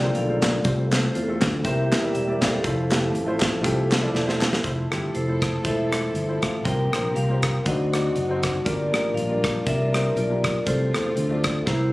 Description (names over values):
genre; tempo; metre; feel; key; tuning
uptempo gospel; 120 BPM; 4/4; swing 55% on 8ths; F major; A4 = 440 Hz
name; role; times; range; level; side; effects
vibraphone with hard mallets; melody; 0.0-11.9 s; E4 to G5; -26 LUFS; equal; none
warm upright piano; accompaniment; 0.0-11.9 s; G2 to D5; -29 LUFS; left 1 dB; none
mellow tonewheel organ; sustained chords; 0.0-4.6 s; D3 to A4; -29 LUFS; right 1 dB; slow rotary speaker, chorus vibrato
fingered electric bass; bass; 0.0-11.9 s; E1 to E2; -26 LUFS; equal; none
modern studio drum kit; drums; 0.1-11.8 s; hi-hat, kick drum, rim click, snare drum; -26 LUFS; equal; none
group handclap; percussion; 0.4-4.5 s; none; -33 LUFS; equal; none
warm studio string section; sustained chords; 4.6-11.9 s; F3 to A4; -35 LUFS; right 1 dB; none
room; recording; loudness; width
light reverb; recorded on a phone in the room, studio reverb; -20 LUFS; side -19 dB against mid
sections
0.0-4.6 A section; 4.6-11.9 B section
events
drum fill 4.1-4.6, 11.7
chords
0.0 Bbmaj7; 0.7 F/C; 1.6 C7; 2.6 Fmaj7; 6.6 C7sus4; 7.7 D7b9; 8.7 Gm7; 10.7 F/C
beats
0.15 | 0.65 1.15 1.65 2.15 | 2.64 3.14 3.64 4.14 | 4.64 5.14 5.64 6.14 | 6.65 7.15 7.65 8.15 | 8.66 9.16 9.66 10.16 | 10.67 11.17 11.67